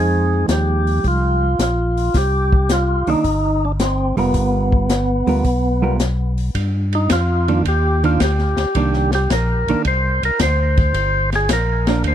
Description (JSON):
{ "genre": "soul jazz organ trio", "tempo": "109 BPM", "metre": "4/4", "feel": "swing 69% on 8ths", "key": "C minor", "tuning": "A4 = 440 Hz", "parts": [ { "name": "percussive tonewheel organ", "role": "melody", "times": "0.0-12.1 s", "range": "B3 to C5", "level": "-20 LUFS", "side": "equal", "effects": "slow rotary speaker, tape echo" }, { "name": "hollow-body jazz guitar", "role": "accompaniment", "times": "0.0-12.1 s", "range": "Eb3 to Bb4", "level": "-21 LUFS", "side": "right 6 dB", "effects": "none" }, { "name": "tonewheel organ", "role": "bass", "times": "0.0-12.1 s", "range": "F1 to G2", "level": "-19 LUFS", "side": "equal", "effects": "overdrive, chorus vibrato, slow rotary speaker" }, { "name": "open jazz drum kit", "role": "drums", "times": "0.5-12.1 s", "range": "hi-hat, kick drum, ride cymbal, snare drum", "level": "-21 LUFS", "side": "left 1 dB", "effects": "none" } ], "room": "little or no reverb", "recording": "dry, close 1970s-style studio recording", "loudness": "-15 LUFS", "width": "side -10 dB against mid", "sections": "0.0-6.5 A section; 6.5-12.1 B section", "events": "tonewheel organ solo 6.5-12.1", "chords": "0.0 Fm9; 2.1 Cm7; 4.3 G7#9; 6.5 Cm9" }